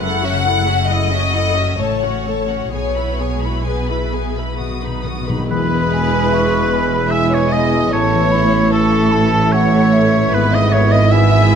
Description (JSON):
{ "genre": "classical, slow romantic movement for symphony orchestra", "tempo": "63-77 BPM", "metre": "3/4", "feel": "rubato", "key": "E major", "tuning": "A4 = 441 Hz", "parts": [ { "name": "rich studio violin section", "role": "melody", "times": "0.0-11.6 s", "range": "A4 to D#6", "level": "-28 LUFS", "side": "left 3 dB", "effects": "none" }, { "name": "warm studio violin section", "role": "second line", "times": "0.0-11.6 s", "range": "A4 to F#5", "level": "-22 LUFS", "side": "left 2 dB", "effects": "none" }, { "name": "warm studio viola section", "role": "accompaniment", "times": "0.0-11.6 s", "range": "G#3 to B4", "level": "-24 LUFS", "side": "right 2 dB", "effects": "none" }, { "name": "concert harp", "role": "arpeggios", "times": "0.0-11.6 s", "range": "F#2 to E6", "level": "-24 LUFS", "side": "left 12 dB", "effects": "none" }, { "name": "warm studio cello section", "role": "bass", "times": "0.0-11.6 s", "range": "E2 to B2", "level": "-22 LUFS", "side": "right 3 dB", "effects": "none" }, { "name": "warm studio double bass section", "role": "bass", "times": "0.0-11.6 s", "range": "E1 to B1", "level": "-22 LUFS", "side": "right 3 dB", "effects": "none" }, { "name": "timpani", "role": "percussion", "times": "4.6-5.5 s", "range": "B2", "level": "-26 LUFS", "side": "left 2 dB", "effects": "none" }, { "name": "bright oboe", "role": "second line", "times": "5.5-11.6 s", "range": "A4 to E5", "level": "-20 LUFS", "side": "right 1 dB", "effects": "none" }, { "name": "mellow clarinet", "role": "second line", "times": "5.5-11.6 s", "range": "A4 to E5", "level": "-24 LUFS", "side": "equal", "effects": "none" }, { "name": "mellow hollow silver concert flute", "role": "second line", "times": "5.5-11.6 s", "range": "E5 to C#6", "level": "-23 LUFS", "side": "left 2 dB", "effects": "none" }, { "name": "dark French horn section", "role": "sustained chords", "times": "5.5-11.6 s", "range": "A3 to E4", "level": "-23 LUFS", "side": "left 3 dB", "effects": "none" }, { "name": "warm trombone section", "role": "sustained chords", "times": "5.5-11.6 s", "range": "E3 to A3", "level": "-25 LUFS", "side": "right 4 dB", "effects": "none" }, { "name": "mellow tuba", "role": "bass", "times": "5.5-11.6 s", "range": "E1 to A1", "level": "-22 LUFS", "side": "right 4 dB", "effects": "none" } ], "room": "moderate scoring stage reverb, RT60 1.7 s", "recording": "none", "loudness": "-13 LUFS", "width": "side -7 dB against mid", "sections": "0.0-5.5 A section; 5.5-11.6 B section", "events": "timpani fill 4.6-5.5", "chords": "0.0 F#m7; 1.8 F#m/A; 2.7 E/B; 4.6 B; 5.5 E; 7.9 A; 10.3 E/G#", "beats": "| 0.02 0.89 1.78 | 2.72 3.67 4.61 | 5.51 6.33 7.12 | 7.93 8.73 9.53 | 10.35 11.13" }